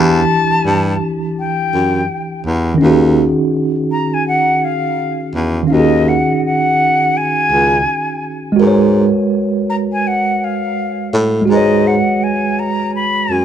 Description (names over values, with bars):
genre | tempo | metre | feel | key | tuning
lo-fi hip hop | 83 BPM | 4/4 | swing 61% on 16ths | Eb minor | A4 = 438 Hz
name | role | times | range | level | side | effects
jazz flute | melody | 0.0-13.4 s | Eb5 to Cb6 | -17 LUFS | left 2 dB | tape echo
mellow tine electric piano | accompaniment | 0.0-13.4 s | Eb3 to Db5 | -15 LUFS | right 2 dB | medium stereo tremolo
breathy baritone saxophone | bass | 0.0-13.4 s | Db2 to A2 | -15 LUFS | equal | none
room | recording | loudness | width
moderate studio ambience, RT60 0.5 s | none | -12 LUFS | side -9 dB against mid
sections
0.0-2.8 A section; 2.8-13.4 B section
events
none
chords
0.0 Em7; 2.8 Ebm11; 8.6 Abm11